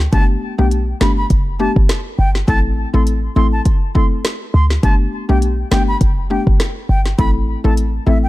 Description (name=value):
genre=dancehall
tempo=102 BPM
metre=4/4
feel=swing 56% on 16ths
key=G major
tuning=A4 = 435 Hz
part: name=short 808-style bass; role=bass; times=0.0-8.3 s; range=F#1 to D2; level=-15 LUFS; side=equal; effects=none
part: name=afro-pop drum kit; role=drums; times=0.0-7.9 s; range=hi-hat, kick drum, rim click, snare drum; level=-16 LUFS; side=equal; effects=none
part: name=wooden flute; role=melody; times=0.1-8.3 s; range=E5 to C6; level=-24 LUFS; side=equal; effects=ping-pong delay
part: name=mallet-like synth pluck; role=accompaniment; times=0.1-8.3 s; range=A3 to A4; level=-21 LUFS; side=left 3 dB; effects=chorus
room=digital ambience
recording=dark, warm production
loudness=-13 LUFS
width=side -17 dB against mid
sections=0.0-8.3 A section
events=none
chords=0.1 Gadd9; 2.5 Am; 4.8 Gadd9; 7.2 Am